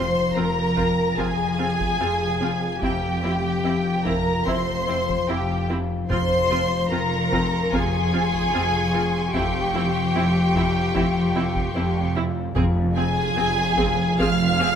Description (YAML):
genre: cinematic, suspense film score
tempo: 74 BPM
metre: 4/4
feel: straight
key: F minor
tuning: A4 = 440 Hz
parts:
  - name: clear symphonic violin section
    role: melody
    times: 0.0-14.8 s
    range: G5 to F6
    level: -26 LUFS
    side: left 2 dB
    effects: none
  - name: warm symphonic violin section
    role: second line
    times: 0.0-14.8 s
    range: G4 to F5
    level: -26 LUFS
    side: equal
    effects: none
  - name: rich symphonic viola section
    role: accompaniment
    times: 0.0-14.7 s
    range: C4 to Ab4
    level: -29 LUFS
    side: right 3 dB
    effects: none
  - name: concert harp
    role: riff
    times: 0.0-14.8 s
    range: F2 to F3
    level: -26 LUFS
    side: left 6 dB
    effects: none
  - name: rich symphonic double bass section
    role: bass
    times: 0.0-14.8 s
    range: F1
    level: -30 LUFS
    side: right 4 dB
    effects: none
  - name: warm symphonic cello section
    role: bass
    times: 0.0-14.8 s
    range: F2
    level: -28 LUFS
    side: right 4 dB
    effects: none
  - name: impact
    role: sound effects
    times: 0.0-2.8 s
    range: none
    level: -44 LUFS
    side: equal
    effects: none
  - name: taiko ensemble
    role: drums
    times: 0.8-14.8 s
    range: none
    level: -33 LUFS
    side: right 1 dB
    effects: none
  - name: timpani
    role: percussion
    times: 6.1-7.3, 12.6-13.7 s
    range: F2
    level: -30 LUFS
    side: right 1 dB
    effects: none
  - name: rich symphonic violin section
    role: texture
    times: 6.1-12.1 s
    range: C6 to Db6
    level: -35 LUFS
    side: left 2 dB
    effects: none
room: light reverb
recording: close, detailed microphones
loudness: -20 LUFS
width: side -8 dB against mid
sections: 0.0-14.8 A section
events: impact 0.0-2.8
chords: 0.0 Fm; 2.8 C/F; 6.1 Fm; 9.3 C/F; 12.6 Fm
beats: 0.36 1.18 2.00 | 2.82 3.65 4.47 5.29 | 6.10 6.91 7.72 8.53 | 9.33 10.14 10.95 11.75 | 12.56 13.37 14.20